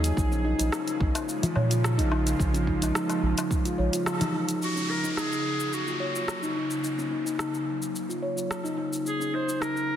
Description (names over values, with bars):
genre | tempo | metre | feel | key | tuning
organic downtempo | 108 BPM | 4/4 | straight | Eb minor | A4 = 444 Hz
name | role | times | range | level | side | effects
bowed-like drone | sustained chords | 0.0-10.0 s | Db3 to Ab4 | -33 LUFS | right 1 dB | built-in reverb, sidechain pumping
steel tongue drum | arpeggios | 0.0-9.7 s | Db4 to Db5 | -30 LUFS | left 1 dB | low-pass filter, ping-pong delay
round analog bass | bass | 0.0-3.9 s | Bb1 to Bb2 | -26 LUFS | equal | sidechain pumping
deep house drum kit | drums | 0.0-9.9 s | hi-hat, rim click, shaker | -34 LUFS | equal | none
electronic kick drum | drums | 0.2-3.6 s | none | -28 LUFS | equal | none
darbuka | percussion | 1.1-4.3 s | none | -34 LUFS | left 2 dB | none
warm clarinet | melody | 4.6-10.0 s | Gb4 to C5 | -31 LUFS | left 1 dB | ping-pong delay
downlifter | sound effects | 4.6-9.1 s | none | -36 LUFS | right 1 dB | none
room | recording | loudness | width
moderate lush hall reverb, RT60 2.2 s | heavily compressed radio sound, multiband compression | -25 LUFS | side -10 dB against mid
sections
0.0-4.6 A section; 4.6-10.0 B section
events
band accent 4.1; filter sweep on steel tongue drum 4.6-10.0; filter sweep on synth drone 4.6-10.0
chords
0.2 Bbm7; 4.6 Ebm7; 9.1 Bbm7